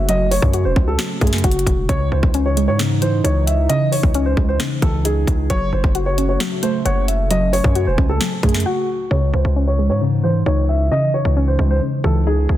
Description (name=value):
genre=hip hop, trap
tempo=133 BPM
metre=4/4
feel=half-time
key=C# harmonic minor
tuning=A4 = 440 Hz
part: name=dark concert grand piano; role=melody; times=0.0-12.6 s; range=F#4 to E5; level=-22 LUFS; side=equal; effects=low-pass filter, tape echo
part: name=soft round pluck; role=accompaniment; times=0.0-12.6 s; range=C#3 to F#5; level=-22 LUFS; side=equal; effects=chorus, low-pass filter
part: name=dark analog pad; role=sustained chords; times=0.0-12.6 s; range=C#3 to G#5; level=-27 LUFS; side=right 1 dB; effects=chorus, phaser, low-pass filter
part: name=distorted 808-style bass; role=bass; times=0.0-12.6 s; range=E1 to G#2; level=-18 LUFS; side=equal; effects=distortion
part: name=trap drum kit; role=drums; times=0.1-8.7 s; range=finger snaps, hi-hat, kick drum, snare drum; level=-19 LUFS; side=equal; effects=soft clipping on snare
room=light reverb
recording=dense, heavily limited modern master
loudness=-15 LUFS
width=side -13 dB against mid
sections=0.0-9.1 A section; 9.1-12.6 B section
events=break 8.7-9.1; filter sweep 9.1-12.6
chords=0.0 F#m; 1.9 C#madd9; 5.5 F#m; 9.1 C#madd9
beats=| 0.09 0.54 0.99 1.44 | 1.89 2.34 2.79 3.24 | 3.69 4.15 4.60 5.05 | 5.50 5.95 6.40 6.85 | 7.30 7.75 8.21 8.66 | 9.11 9.56 10.01 10.46 | 10.91 11.36 11.81 12.27